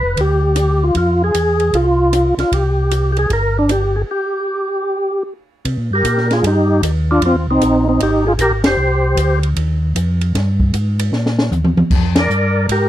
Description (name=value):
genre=soul jazz organ trio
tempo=153 BPM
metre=4/4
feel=swing 64% on 8ths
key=C minor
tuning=A4 = 439 Hz
part: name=percussive tonewheel organ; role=melody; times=0.0-9.4, 12.2-12.9 s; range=C4 to D5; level=-15 LUFS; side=equal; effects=slow rotary speaker, overdrive, chorus vibrato, slapback echo
part: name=mellow tonewheel organ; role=bass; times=0.0-12.9 s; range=F1 to C3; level=-17 LUFS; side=equal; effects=chorus vibrato, slow rotary speaker
part: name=open jazz drum kit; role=drums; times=0.2-12.8 s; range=crash cymbal, hi-hat, kick drum, ride cymbal, rim click, snare drum, toms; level=-20 LUFS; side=equal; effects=none
room=light reverb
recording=dry, close 1970s-style studio recording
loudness=-13 LUFS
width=side -12 dB against mid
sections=0.0-5.6 A section; 5.6-12.9 A section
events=break 4.1-5.6; band accent 8.6, 12.1; drum fill 11.1-11.9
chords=0.0 G7; 1.0 Fm; 2.5 C5; 4.1 N.C.; 5.6 Cm7; 7.2 Fm9; 8.8 Cm9; 11.9 Fmadd9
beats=0.17 0.56 | 0.95 1.34 1.74 2.13 | 2.52 2.91 3.30 3.69 | 4.08 4.48 4.87 5.26 | 5.65 6.04 6.43 6.82 | 7.21 7.61 8.00 8.39 | 8.78 9.17 9.56 9.95 | 10.34 10.73 11.12 11.51 | 11.90 12.29 12.68